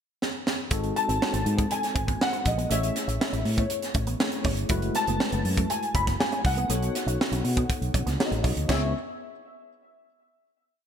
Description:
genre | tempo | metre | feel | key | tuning
polished 1980s jazz-funk pop | 120 BPM | 4/4 | straight | unclear | A4 = 439 Hz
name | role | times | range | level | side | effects
crisp fusion drum kit | drums | 0.2-8.8 s | crash cymbal, hi-hat, kick drum, snare drum | -28 LUFS | right 1 dB | gated reverb
tine electric piano | accompaniment | 0.7-8.9 s | G#3 to D#5 | -32 LUFS | left 3 dB | medium tremolo, analog chorus
electric guitar with an envelope filter | riff | 0.7-8.8 s | F#3 to C#4 | -37 LUFS | right 6 dB | analog chorus
mellow fretless electric bass | bass | 0.7-8.9 s | F#1 to B2 | -28 LUFS | equal | none
dark grand piano | melody | 1.0-8.9 s | C#5 to B5 | -30 LUFS | left 2 dB | analog chorus, digital delay
room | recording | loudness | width
light reverb, small room ambience | bright 1980s-style digital production | -24 LUFS | side -8 dB against mid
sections
0.0-0.7 pickup bar; 0.7-8.7 verse; 8.7-10.7 final chord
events
drum fill 0.2-0.7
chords
0.0 N.C.; 0.7 G#7b9; 2.7 Amaj7; 4.7 F#m11; 6.7 B9; 8.7 N.C.

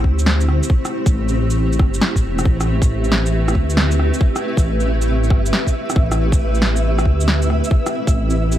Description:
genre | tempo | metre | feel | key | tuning
future garage | 137 BPM | 4/4 | swing 66% on 16ths | A minor | A4 = 440 Hz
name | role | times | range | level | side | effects
granular cloud pad | sustained chords | 0.0-8.6 s | A3 to C5 | -22 LUFS | equal | built-in reverb, sidechain pumping
dark detuned saw bass | bass | 0.0-8.6 s | E1 to D2 | -18 LUFS | equal | sidechain pumping
electronic kick drum | drums | 0.0-8.1 s | none | -16 LUFS | equal | none
electronic shaker, snare drum and rim click | drums | 0.2-8.6 s | none | -21 LUFS | equal | none
flickering grainy texture | texture | 2.7-8.6 s | E5 | -29 LUFS | right 1 dB | built-in reverb
room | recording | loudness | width
little or no reverb | vinyl crackle | -15 LUFS | side -12 dB against mid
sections
0.0-8.6 A section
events
none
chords
0.0 Am7

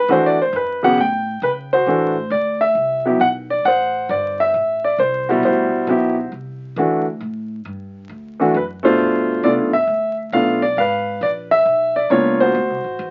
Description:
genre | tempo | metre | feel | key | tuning
jazz | 135 BPM | 4/4 | swing 66% on 8ths | D mixolydian | A4 = 439 Hz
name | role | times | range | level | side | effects
warm grand piano | melody | 0.0-13.1 s | B2 to G5 | -18 LUFS | equal | none
upright bass | bass | 0.0-13.1 s | G1 to C#3 | -34 LUFS | equal | none
room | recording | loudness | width
light reverb | very old 78 rpm record, vinyl crackle, nothing above 7.5 kHz | -18 LUFS | mono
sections
0.0-1.9 A section; 1.9-13.1 B section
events
grand piano solo 0.0-1.9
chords
0.1 D; 1.0 A7; 1.9 D7; 7.2 Gsus2; 8.1 D; 9.0 G7; 10.8 G#dim7; 12.6 D7

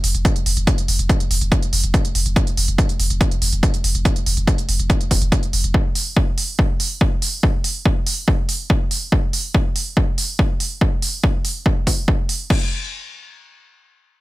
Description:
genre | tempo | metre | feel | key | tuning
driving peak-time techno | 142 BPM | 4/4 | straight | unclear | A4 = 440 Hz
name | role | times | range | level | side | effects
saturated sub bass | bass | 0.0-5.7 s | F1 | -22 LUFS | equal | sidechain pumping, low-pass filter
techno drum kit | drums | 0.0-12.6 s | crash cymbal, hi-hat | -23 LUFS | right 2 dB | none
electronic kick drum | drums | 0.2-12.6 s | none | -18 LUFS | equal | none
room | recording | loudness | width
little or no reverb | none | -16 LUFS | side -18 dB against mid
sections
0.0-12.5 A section; 12.5-14.2 B section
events
none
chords
none

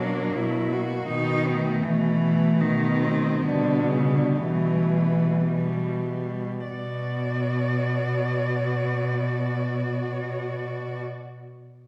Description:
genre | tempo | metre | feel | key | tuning
classical, lyrical piece for cello ensemble | 45-82 BPM | 3/4 | rubato | B minor | A4 = 442 Hz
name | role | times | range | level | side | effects
rich cello | melody | 0.0-11.0 s | G3 to D5 | -33 LUFS | equal | none
rich cello | second line | 0.0-11.0 s | G3 to F#4 | -34 LUFS | equal | none
rich cello | accompaniment | 0.0-11.0 s | B2 to F#3 | -28 LUFS | equal | none
warm cello | bass | 0.0-11.0 s | B2 | -31 LUFS | equal | none
room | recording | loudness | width
wet recital hall reverb, RT60 1.5 s | none | -25 LUFS | mono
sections
0.0-6.7 A section; 6.7-10.3 B section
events
slowing down 0.0-6.7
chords
0.0 F#7/B; 1.1 B7; 3.4 Em/B; 6.7 Bm

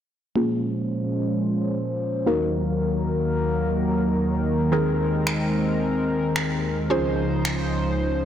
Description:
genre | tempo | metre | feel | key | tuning
dance-pop | 110 BPM | 4/4 | straight | Bb minor | A4 = 440 Hz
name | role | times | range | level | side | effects
mallet-like synth pluck | accompaniment | 0.4-8.2 s | Eb3 to C5 | -26 LUFS | equal | chorus, phaser, low-pass filter
chorused pulse-width pad | sustained chords | 0.4-8.2 s | Db2 to C5 | -22 LUFS | equal | low-pass filter
electronic finger snaps | drums | 5.3-7.6 s | none | -29 LUFS | right 1 dB | soft clipping on snare
room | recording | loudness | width
wet lush hall reverb, RT60 2.4 s | blown-out, overdriven recording, overdrive | -21 LUFS | side -10 dB against mid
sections
0.4-8.2 A section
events
filter sweep 0.4-8.2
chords
0.4 Bbm7; 2.3 Ebm; 4.7 Abadd9/Eb; 6.9 Dbmaj7

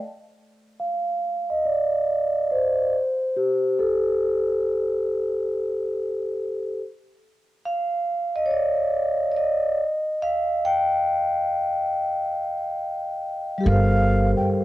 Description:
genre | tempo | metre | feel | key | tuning
lo-fi hip hop | 70 BPM | 4/4 | swing 64% on 16ths | G minor | A4 = 436 Hz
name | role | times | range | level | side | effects
vibraphone with soft mallets | accompaniment | 0.8-14.6 s | G3 to G5 | -22 LUFS | equal | cassette tape, low-pass filter, plate reverb
baroque flute | melody | 13.7-14.5 s | F5 to G5 | -25 LUFS | equal | plate reverb
upright bass | bass | 13.7-14.3 s | G1 | -20 LUFS | right 1 dB | none
room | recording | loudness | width
wet studio reverb, RT60 0.6 s | cassette tape | -21 LUFS | side -15 dB against mid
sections
0.0-13.6 A section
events
vibraphone solo 0.0-13.6; filter sweep on vibraphone 0.0-13.6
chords
0.0 N.C.; 13.6 Gm11

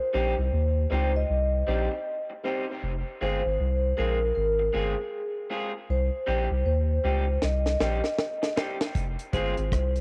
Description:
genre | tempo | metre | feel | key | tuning
dub reggae | 78 BPM | 4/4 | swing 62% on 16ths | F minor | A4 = 440 Hz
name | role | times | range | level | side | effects
vibraphone with medium mallets | melody | 0.0-10.0 s | Ab4 to Eb5 | -32 LUFS | equal | cassette tape, dub echo
electric guitar through a small old amp | accompaniment | 0.1-9.5 s | G3 to Ab4 | -36 LUFS | equal | dub echo
clear upright piano | stabs | 0.1-2.7, 9.3-9.6 s | C4 to C5 | -38 LUFS | equal | dub echo
soft dub sub bass | bass | 0.1-10.0 s | F1 to Eb2 | -29 LUFS | equal | none
deep reggae drum kit | drums | 7.4-10.0 s | hi-hat, kick drum, rim click, snare drum | -31 LUFS | equal | cassette tape
room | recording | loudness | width
light reverb, studio ambience | home recording on cassette | -27 LUFS | mono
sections
0.0-10.0 A section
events
drum fill 7.4-9.0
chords
0.0 Cm; 2.8 Fm; 5.9 Cm; 9.0 Fm

